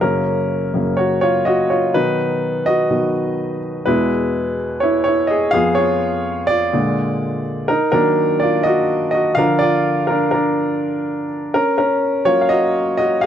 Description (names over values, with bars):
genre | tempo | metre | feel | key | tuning
pop | 125 BPM | 4/4 | straight | Eb harmonic minor from 7.7 s | A4 = 440 Hz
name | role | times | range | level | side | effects
clear baby grand piano | solo | 0.0-13.3 s | E2 to F5 | -15 LUFS | equal | none
room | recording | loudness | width
light reverb | dry, close 1970s-style studio recording | -15 LUFS | side -9 dB against mid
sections
0.0-7.7 A section; 7.7-13.3 B section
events
grand piano solo 0.0-7.7, 7.7-13.3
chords
0.0 Gb; 1.9 B; 3.9 E; 5.5 Db7/F; 6.7 Bb7; 7.7 Ebm; 9.4 Bb/D; 11.5 Gb